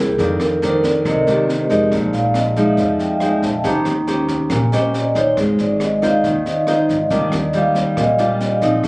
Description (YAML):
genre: bossa nova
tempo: 139 BPM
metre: 4/4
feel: straight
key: Eb major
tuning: A4 = 440 Hz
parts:
  - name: nylon-string guitar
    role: accompaniment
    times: 0.0-8.9 s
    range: F2 to C5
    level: -18 LUFS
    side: equal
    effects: none
  - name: vibraphone with soft mallets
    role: accompaniment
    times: 0.0-8.9 s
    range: G4 to Bb5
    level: -18 LUFS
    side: equal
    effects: none
  - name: upright bass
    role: bass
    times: 0.0-8.9 s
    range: Ab1 to F2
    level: -25 LUFS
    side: equal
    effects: none
  - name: jazz brush drum kit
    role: drums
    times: 0.2-8.9 s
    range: kick drum, rim click, snare drum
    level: -26 LUFS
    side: equal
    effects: none
room: light reverb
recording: recorded on a phone in the room, club reverb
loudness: -14 LUFS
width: side -26 dB against mid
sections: 0.0-8.9 A section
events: vibraphone solo 0.0-8.9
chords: 0.2 F6; 1.9 Bb7sus4; 3.6 Eb13; 5.4 Ab6; 7.1 Ebmaj9